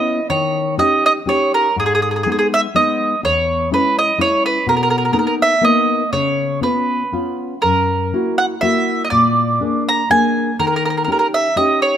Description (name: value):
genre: italian folk, Italian serenade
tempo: 122 BPM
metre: 3/4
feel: swing 53% on 8ths, rubato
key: unclear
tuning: A4 = 440 Hz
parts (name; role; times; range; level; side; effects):
- mandolin; melody; 0.0-12.0 s; G#4 to A#5; -16 LUFS; right 2 dB; none
- nylon-string guitar; accompaniment; 0.0-12.0 s; E2 to G#4; -19 LUFS; left 3 dB; none
room: light reverb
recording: close, detailed microphones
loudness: -14 LUFS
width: side -9 dB against mid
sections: 0.0-12.0 A section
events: none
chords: 0.3 D#7; 1.8 G#m; 3.2 E6; 4.7 Bmaj7; 6.1 C#7; 7.6 F#7; 9.1 A#7; 10.6 D#7